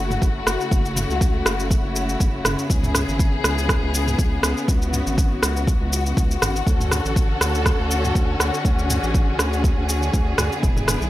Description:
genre	afro house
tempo	121 BPM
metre	4/4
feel	swing 55% on 16ths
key	unclear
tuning	A4 = 442 Hz
part	warm studio string section	sustained chords	0.0-11.1 s	C#3 to A4	-24 LUFS	left 2 dB	sidechain pumping
part	round analog bass	bass	0.0-11.1 s	E1 to D2	-24 LUFS	equal	sidechain pumping
part	deep house drum kit	drums	0.1-11.1 s	rim click, shaker, toms	-24 LUFS	equal	small room ambience
part	electronic kick drum	drums	0.2-10.7 s	none	-20 LUFS	equal	small room ambience
room	light reverb, digital ambience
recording	none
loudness	-18 LUFS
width	side -15 dB against mid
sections	0.0-11.1 A section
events	none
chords	0.0 F#m7; 2.7 C#m7; 6.7 Dmaj7

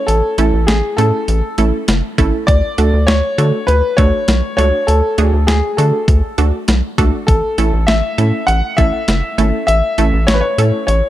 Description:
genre	synth-pop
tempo	100 BPM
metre	4/4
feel	straight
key	A major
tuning	A4 = 440 Hz
part	warm grand piano	melody	0.0-11.1 s	G#4 to F#5	-17 LUFS	left 1 dB	none
part	rubbery square bass	bass	0.1-11.0 s	F#1 to D3	-14 LUFS	equal	none
part	clean 12-bit digital drum machine	drums	0.1-11.0 s	hi-hat, kick drum, snare drum	-17 LUFS	equal	none
part	wide unison pluck	accompaniment	0.4-10.8 s	A3 to A4	-20 LUFS	right 3 dB	none
room	light reverb, digital ambience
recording	dark, warm production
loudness	-12 LUFS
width	side -14 dB against mid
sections	0.0-11.1 A section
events	none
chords	0.0 A; 2.5 D; 7.3 A

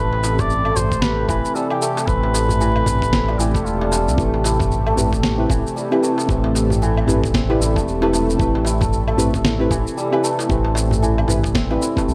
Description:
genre	organic downtempo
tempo	114 BPM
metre	4/4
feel	swing 60% on 16ths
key	A minor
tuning	A4 = 440 Hz
part	trumpet with cup mute	melody	0.0-4.2 s	F4 to D5	-26 LUFS	equal	tape echo
part	warm analog pad	sustained chords	0.0-12.1 s	C3 to A4	-28 LUFS	equal	chorus, sidechain pumping
part	santur	arpeggios	0.0-12.1 s	E3 to A4	-27 LUFS	equal	tape echo
part	smooth gliding synth bass	bass	0.0-12.1 s	E1 to C2	-23 LUFS	equal	tube saturation
part	darbuka	percussion	0.1-12.1 s	none	-30 LUFS	equal	none
part	electronic shaker, woodblock and snare drum	drums	0.2-12.1 s	none	-27 LUFS	equal	none
part	electronic kick drum	drums	0.4-12.1 s	none	-26 LUFS	equal	overdrive
part	deep mellow chord stab	accompaniment	4.2-12.1 s	C4 to B4	-25 LUFS	equal	chorus, sidechain pumping, tape echo
room	light reverb, small room ambience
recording	none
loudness	-19 LUFS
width	mono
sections	0.0-12.1 A section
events	none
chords	0.0 Am9

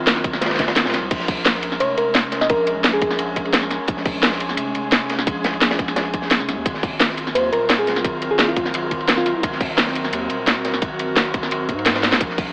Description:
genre	liquid drum and bass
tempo	173 BPM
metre	4/4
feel	straight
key	Bb minor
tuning	A4 = 441 Hz
part	airy breathy pad	sustained chords	0.0-12.5 s	Gb3 to Bb4	-26 LUFS	equal	chorus, sidechain pumping
part	saturated sub bass	bass	0.0-12.5 s	Eb1 to Ab2	-31 LUFS	equal	none
part	crunchy breakbeat drum kit	drums	0.1-12.5 s	hi-hat, ride cymbal, snare drum	-24 LUFS	equal	high-pass filter on cymbals, high-pass filter on hats, high-pass filter on snare, high-pass filter on room
part	garage drum kit	drums	0.1-12.5 s	crash cymbal, hi-hat, snare drum	-19 LUFS	equal	none
part	electronic kick drum	drums	0.2-12.5 s	none	-23 LUFS	equal	none
part	bell-like FM electric piano	melody	1.8-3.4, 7.3-9.4 s	F4 to Eb5	-22 LUFS	equal	chorus, dub echo
room	light reverb, small room ambience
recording	AM radio sound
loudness	-17 LUFS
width	side -32 dB against mid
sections	0.0-1.1 A section; 1.1-12.5 A section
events	drop 0.0-1.1, 1.1-12.5; drum fill 12.0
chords	0.0 Ab13; 1.1 Bbm7; 6.7 Ab13

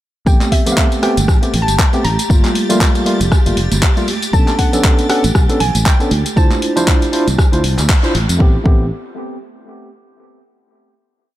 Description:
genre	deep house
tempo	118 BPM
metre	4/4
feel	swing 57% on 16ths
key	unclear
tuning	A4 = 440 Hz
part	soft round pluck	melody	0.3-7.9 s	E5 to Bb5	-23 LUFS	equal	wide subtle chorus, tape echo
part	tine electric piano	stabs	0.3-8.9 s	G3 to C5	-18 LUFS	equal	medium tremolo, sidechain pumping, analog delay
part	fingered electric bass	bass	0.3-8.9 s	F1 to F2	-17 LUFS	equal	sidechain pumping
part	deep house drum kit	drums	0.3-8.4 s	handclaps, hi-hat, rim click, tambourine	-20 LUFS	equal	none
part	electronic kick drum	drums	0.3-8.8 s	none	-12 LUFS	equal	none
part	string machine, violins	texture	0.3-8.4 s	G4 to A6	-28 LUFS	left 1 dB	ensemble chorus, sidechain pumping
part	congas	percussion	0.4-8.3 s	none	-25 LUFS	right 5 dB	none
room	digital ambience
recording	none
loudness	-11 LUFS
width	side -14 dB against mid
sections	0.3-8.4 drop; 8.4-10.4 final chord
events	drop 0.3-8.4; band accent 7.9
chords	0.3 Am9; 2.3 Gm9; 4.3 Bm9; 6.1 Dm9; 8.4 Am9

